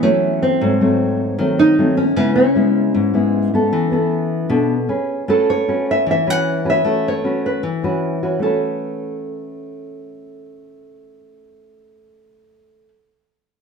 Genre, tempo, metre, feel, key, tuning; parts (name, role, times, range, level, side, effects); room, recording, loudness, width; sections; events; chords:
bossa nova; 154 BPM; 4/4; straight; A major; A4 = 438 Hz
nylon-string guitar; melody; 0.0-12.9 s; A3 to F#5; -18 LUFS; right 1 dB
nylon-string guitar; accompaniment; 0.0-12.9 s; G#2 to B4; -18 LUFS; left 1 dB
moderate large studio reverb, RT60 1.4 s; -15 LUFS; side -5 dB against mid
0.0-5.3 A section; 5.3-8.4 B section; 8.4-11.5 C section
0.0 A6; 0.6 G#7b9; 2.2 C#m7; 3.7 E7sus4; 4.9 G#madd11/C#; 5.3 A69